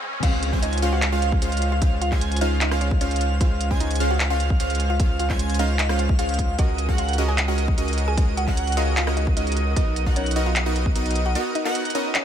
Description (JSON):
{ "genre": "future bass", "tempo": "151 BPM", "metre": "4/4", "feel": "half-time", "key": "Db major", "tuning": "A4 = 443 Hz", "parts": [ { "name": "mallet-like synth pluck", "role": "melody", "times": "0.0-12.2 s", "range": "Db4 to Ab5", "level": "-31 LUFS", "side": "left 1 dB", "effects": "chorus, phaser, sidechain pumping, digital delay" }, { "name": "trap drum kit", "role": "drums", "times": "0.0-12.2 s", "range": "crash cymbal, handclaps, hi-hat, rim click, toms", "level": "-29 LUFS", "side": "equal", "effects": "none" }, { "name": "riser and swell", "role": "sound effects", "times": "0.0-0.2, 12.1-12.2 s", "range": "none", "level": "-35 LUFS", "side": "left 2 dB", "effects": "none" }, { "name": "airy dreamy lead", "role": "arpeggios", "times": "0.2-12.2 s", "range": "Eb5 to Ab5", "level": "-31 LUFS", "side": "right 1 dB", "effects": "chorus, phaser, sidechain pumping" }, { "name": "supersaw stab", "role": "riff", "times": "0.2-12.2 s", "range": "Ab3 to Ab5", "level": "-27 LUFS", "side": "right 2 dB", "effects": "sidechain pumping" }, { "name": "saturated sub bass", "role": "bass", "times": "0.2-11.4 s", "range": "Cb2 to Db2", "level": "-24 LUFS", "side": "equal", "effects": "sidechain pumping" }, { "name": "electronic kick drum", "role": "drums", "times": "0.2-10.9 s", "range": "none", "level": "-22 LUFS", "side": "equal", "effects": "none" } ], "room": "digital ambience", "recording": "high-pass filter", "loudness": "-19 LUFS", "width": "side -9 dB against mid", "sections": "0.2-12.2 A section", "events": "break 0.0; riser 0.0; drum fill 0.0; drop 0.2-12.2", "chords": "0.2 Dbmaj7; 6.6 Gb69/Db; 9.8 Cbmaj7" }